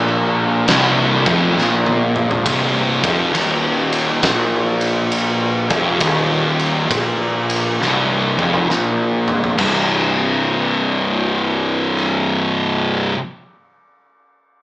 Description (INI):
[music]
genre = stoner and doom metal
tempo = 67 BPM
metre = 4/4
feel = swing 66% on 8ths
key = C minor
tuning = A4 = 439 Hz
[part]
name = deep rumbling drone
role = sustained chords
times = 0.0-2.4 s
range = none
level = barely audible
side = none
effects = none
[part]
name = sludgy distorted guitar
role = riff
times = 0.0-2.4 s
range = C2 to Bb2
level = -23 LUFS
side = equal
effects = none
[part]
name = thick fuzz guitar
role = riff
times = 0.0-13.2 s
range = C2 to C3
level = -20 LUFS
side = left 2 dB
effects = distortion
[part]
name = thick fuzz guitar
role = riff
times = 0.0-13.2 s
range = C2 to C3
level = -22 LUFS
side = right 2 dB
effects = distortion
[part]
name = fuzz picked electric bass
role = bass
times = 0.0-13.1 s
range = C1 to Bb1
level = -20 LUFS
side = equal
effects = overdrive
[part]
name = big rock drum kit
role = drums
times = 0.7-12.1 s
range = crash cymbal, kick drum, ride cymbal, rim click, snare drum, toms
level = -20 LUFS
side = equal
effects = none
[sound]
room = light reverb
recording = band playing live in one room, small speaker sound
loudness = -14 LUFS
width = side -20 dB against mid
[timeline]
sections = 0.0-2.5 A section; 2.5-9.6 B section; 9.6-13.2 C section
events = drum fill 1.6-2.5, 7.8-9.6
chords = 0.0 N.C.; 2.5 Cm; 9.6 C5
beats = 0.69 1.58 | 2.46 3.35 4.24 5.13 | 6.02 6.91 7.80 8.70 | 9.59 10.49 11.38 12.28